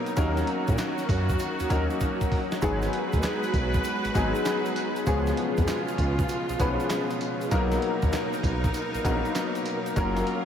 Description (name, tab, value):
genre	R&B, new jack swing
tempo	98 BPM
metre	4/4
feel	swing 66% on 16ths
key	unclear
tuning	A4 = 442 Hz
part	clear concert grand piano	accompaniment	0.0-10.4 s	E#3 to B4	-28 LUFS	left 2 dB	ensemble chorus
part	clear studio string section	sustained chords	0.0-10.4 s	B2 to B4	-32 LUFS	right 1 dB	none
part	dusty soul sampler-style drum kit	drums	0.1-10.4 s	handclaps, hi-hat, kick drum, snare drum, tambourine	-30 LUFS	equal	vintage 12-bit sampler grit
part	tube shaker	percussion	0.1-10.3 s	none	-49 LUFS	right 10 dB	none
part	smooth gliding synth bass	bass	0.2-10.2 s	F#1 to A#2	-29 LUFS	equal	none
room	wet huge ambient reverb, RT60 9.2 s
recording	dreamy mix soaked in reverb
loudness	-24 LUFS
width	side -8 dB against mid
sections	0.0-10.4 A section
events	drum fill 2.0-2.6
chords	0.2 D#m7; 2.6 G#m7; 5.1 C#7; 7.5 Bmaj7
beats	| 0.17 0.78 1.40 2.01 | 2.62 3.23 3.84 4.46 | 5.07 5.68 6.29 6.91 | 7.52 8.13 8.74 9.35 | 9.97